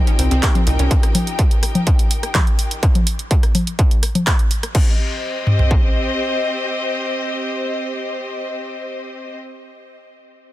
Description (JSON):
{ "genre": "melodic techno", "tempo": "125 BPM", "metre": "4/4", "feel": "straight", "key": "C minor", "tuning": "A4 = 441 Hz", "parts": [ { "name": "rich studio string section", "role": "sustained chords", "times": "0.0-9.3 s", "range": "C4 to G5", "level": "-24 LUFS", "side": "left 1 dB", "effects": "vintage 12-bit sampler grit, sidechain pumping" }, { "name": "warbly tape-like pad", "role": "texture", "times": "0.1-0.9 s", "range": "F4 to G5", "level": "-39 LUFS", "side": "left 1 dB", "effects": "none" }, { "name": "wide unison pluck", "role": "arpeggios", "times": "0.1-0.9 s", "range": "C4 to G4", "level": "-27 LUFS", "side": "equal", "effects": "sidechain pumping, dub echo" }, { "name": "techno drum kit", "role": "drums", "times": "0.1-4.8 s", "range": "congas, crash cymbal, handclaps, hi-hat, rim click", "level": "-22 LUFS", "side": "left 1 dB", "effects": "overdrive" }, { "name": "tight sequencer bass", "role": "bass", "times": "0.2-0.9 s", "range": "C2", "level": "-16 LUFS", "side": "equal", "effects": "sidechain pumping" }, { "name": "techno drum kit", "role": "drums", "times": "0.4-5.8 s", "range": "kick drum, toms", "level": "-16 LUFS", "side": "equal", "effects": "distortion, overdrive" } ], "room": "little or no reverb", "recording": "dense, heavily limited modern master", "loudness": "-16 LUFS", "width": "side -15 dB against mid", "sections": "0.0-4.7 A section; 4.7-8.6 B section", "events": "drop 0.0-4.7", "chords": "0.0 Eb; 4.7 Cm" }